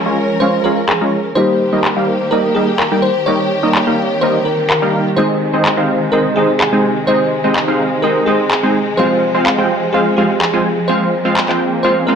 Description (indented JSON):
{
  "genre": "EDM, festival progressive house",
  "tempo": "126 BPM",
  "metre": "4/4",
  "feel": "straight",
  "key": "Ab major",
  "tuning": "A4 = 439 Hz",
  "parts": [
    { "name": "bell-like FM electric piano", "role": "melody", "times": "0.0-12.2 s", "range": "G4 to Db5", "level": "-18 LUFS", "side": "equal", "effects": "chorus, digital delay" },
    { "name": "felt-muted upright piano", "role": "accompaniment", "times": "0.0-12.2 s", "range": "Eb3 to Ab4", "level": "-23 LUFS", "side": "left 2 dB", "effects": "none" },
    { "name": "dark symphonic string section", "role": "sustained chords", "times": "0.0-12.2 s", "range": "C3 to Bb4", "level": "-21 LUFS", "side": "equal", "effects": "none" },
    { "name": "supersaw stab", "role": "riff", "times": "0.0-12.2 s", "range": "G3 to Bb5", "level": "-15 LUFS", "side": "right 1 dB", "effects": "low-pass filter, digital delay" },
    { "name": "electronic handclaps", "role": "drums", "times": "0.9-11.6 s", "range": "none", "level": "-18 LUFS", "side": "left 1 dB", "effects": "low-pass filter on hats, studio reverb, low-pass filter on perc, low-pass filter on snare, low-pass filter on cymbals" },
    { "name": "swell", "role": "sound effects", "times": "12.1-12.2 s", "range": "none", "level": "-26 LUFS", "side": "right 5 dB", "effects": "none" }
  ],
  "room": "moderate digital room reverb, RT60 1.4 s, digital ambience",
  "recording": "none",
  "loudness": "-12 LUFS",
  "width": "side -7 dB against mid",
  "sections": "0.0-12.2 A section",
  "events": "none",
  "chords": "0.0 Db; 1.4 Eb; 5.2 Ab; 9.0 Fm",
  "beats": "0.42 0.89 | 1.37 1.85 2.32 2.80 | 3.27 3.75 4.23 4.70 | 5.18 5.66 6.13 6.61 | 7.08 7.56 8.04 8.51 | 8.99 9.46 9.94 10.42 | 10.89 11.37 11.85"
}